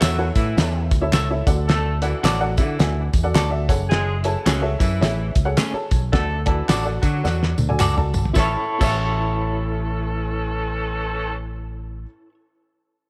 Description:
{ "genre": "uptempo 1960s-style soul", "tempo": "108 BPM", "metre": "4/4", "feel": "swing 61% on 8ths", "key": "A major", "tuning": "A4 = 440 Hz", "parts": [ { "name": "bright saxophone section", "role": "second line", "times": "0.0-11.3 s", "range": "E3 to A4", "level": "-31 LUFS", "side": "equal", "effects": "none" }, { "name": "warm upright piano", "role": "accompaniment", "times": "0.0-12.1 s", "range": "A1 to A5", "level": "-30 LUFS", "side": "equal", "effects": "none" }, { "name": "electric guitar at the edge of break-up", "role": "stabs", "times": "0.0-12.3 s", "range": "A3 to E5", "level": "-29 LUFS", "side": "equal", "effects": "tremolo" }, { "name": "fingered electric bass", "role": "bass", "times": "0.0-12.0 s", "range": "F#1 to D3", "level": "-26 LUFS", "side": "equal", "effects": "none" }, { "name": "cloth-damped thuddy drum kit", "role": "drums", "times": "0.0-8.9 s", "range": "crash cymbal, hi-hat, kick drum, snare drum, toms", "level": "-23 LUFS", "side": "equal", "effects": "none" }, { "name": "handclaps and tambourine", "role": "percussion", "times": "0.0-8.9 s", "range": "none", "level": "-36 LUFS", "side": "equal", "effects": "none" } ], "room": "light reverb, studio reverb", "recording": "none", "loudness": "-21 LUFS", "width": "mono", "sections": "0.0-8.4 A section; 8.4-10.6 B section", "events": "drum fill 7.2-8.4", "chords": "0.0 A; 1.4 D; 3.6 F#madd9; 6.1 D; 8.4 A" }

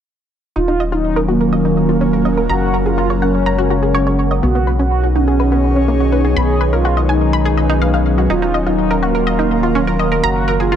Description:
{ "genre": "techno", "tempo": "124 BPM", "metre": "4/4", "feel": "straight", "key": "Eb minor", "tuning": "A4 = 441 Hz", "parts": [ { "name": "mellow synth brass", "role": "melody", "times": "0.6-10.8 s", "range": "Bb3 to Ab4", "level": "-19 LUFS", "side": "right 1 dB", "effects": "chorus, analog delay" }, { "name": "evolving wavetable pad", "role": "sustained chords", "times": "0.9-10.8 s", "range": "Db3 to Ab4", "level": "-21 LUFS", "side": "equal", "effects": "phaser, built-in reverb, vintage 12-bit sampler grit" }, { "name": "analog pluck", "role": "arpeggios", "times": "0.6-10.8 s", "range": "Bb3 to Cb6", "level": "-20 LUFS", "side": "equal", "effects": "chorus, vintage 12-bit sampler grit, tape echo" }, { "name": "round analog bass", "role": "bass", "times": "0.6-10.8 s", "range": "Eb1 to B1", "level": "-18 LUFS", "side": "equal", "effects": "none" }, { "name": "airy breathy pad", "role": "texture", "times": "0.8-10.8 s", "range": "Gb3 to Db5", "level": "-20 LUFS", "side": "equal", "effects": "chorus" } ], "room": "light reverb, digital ambience", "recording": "echo-heavy mix", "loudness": "-13 LUFS", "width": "side -9 dB against mid", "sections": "0.6-10.8 A section", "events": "filter sweep on synth pluck 0.6-10.8; filter sweep on ambient pad 0.6-10.8", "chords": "0.6 Ebmadd9; 2.5 Gbadd9; 4.4 B; 6.4 Abm/Cb; 8.3 Ebmadd9; 10.2 Gbadd9" }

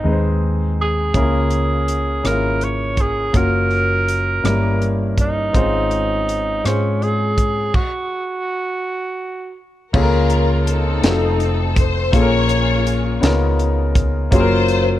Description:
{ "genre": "slow gospel", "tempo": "55 BPM (dotted quarters)", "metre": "6/8", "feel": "straight", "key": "Db major", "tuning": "A4 = 441 Hz", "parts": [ { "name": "breathy tenor saxophone", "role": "melody", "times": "0.0-9.6 s", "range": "Db4 to Db5", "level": "-21 LUFS", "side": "right 2 dB", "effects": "none" }, { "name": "clear concert grand piano", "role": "accompaniment", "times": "0.0-15.0 s", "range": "G2 to C5", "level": "-20 LUFS", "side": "left 3 dB", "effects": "none" }, { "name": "hollow-body short-scale fingered electric bass", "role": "bass", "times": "0.0-15.0 s", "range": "F1 to Ab2", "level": "-20 LUFS", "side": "equal", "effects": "none" }, { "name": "tight funk drum kit", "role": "drums", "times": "1.1-14.9 s", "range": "crash cymbal, hi-hat, kick drum, rim click, snare drum", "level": "-19 LUFS", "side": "equal", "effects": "none" }, { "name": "warm studio string section", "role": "melody", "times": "10.0-15.0 s", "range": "C4 to Db5", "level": "-22 LUFS", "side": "left 3 dB", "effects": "none" } ], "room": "light reverb", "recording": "worn, warbling old tape, cassette tape, warbly pitch drift", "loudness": "-15 LUFS", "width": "side -13 dB against mid", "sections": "0.0-9.9 A section; 9.9-15.0 B section", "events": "stop 7.7-9.9", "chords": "0.0 Ab; 1.1 Db6; 3.3 Gbmaj7; 4.4 Gdim7; 5.5 Dbmaj7/Ab; 7.7 N.C.; 9.9 Db6; 11.0 F7; 12.1 Bbm7; 13.2 Db13; 14.3 Gbmaj7" }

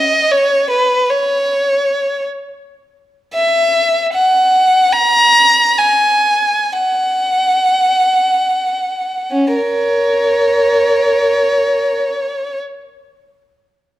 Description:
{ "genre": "classical, free, expressive piece for unaccompanied violin", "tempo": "free time", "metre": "none", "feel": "none", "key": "C# dorian", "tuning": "A4 = 444 Hz", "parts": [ { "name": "clear violin", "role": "solo", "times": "0.0-12.6 s", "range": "C#4 to A#5", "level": "-12 LUFS", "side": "equal", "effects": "none" } ], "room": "moderate recital hall reverb, RT60 1.6 s", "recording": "dark, warm production", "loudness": "-11 LUFS", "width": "side -14 dB against mid", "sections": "0.0-9.3 A section; 9.3-13.0 B section", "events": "slowing down 2.2-9.3", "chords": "none" }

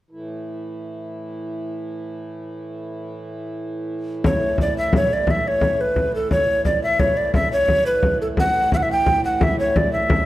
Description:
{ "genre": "medieval dance", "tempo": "116 BPM (dotted quarters)", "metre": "6/8", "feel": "straight", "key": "A major", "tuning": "A4 = 440 Hz", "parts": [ { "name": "pedal harmonium", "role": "drone", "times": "0.1-10.3 s", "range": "A2 to E3", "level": "-29 LUFS", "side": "right 1 dB", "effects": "none" }, { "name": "frame drum", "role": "percussion", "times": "4.2-10.3 s", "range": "none", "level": "-21 LUFS", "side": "left 1 dB", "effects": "none" }, { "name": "breathy mellow tenor recorder", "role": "melody", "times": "4.3-10.3 s", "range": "A4 to G5", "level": "-19 LUFS", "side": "equal", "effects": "none" } ], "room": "wet recital hall reverb, RT60 1.4 s", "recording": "none", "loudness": "-17 LUFS", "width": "side -15 dB against mid", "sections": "0.1-4.2 A section; 4.2-10.3 B section", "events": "none", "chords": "none" }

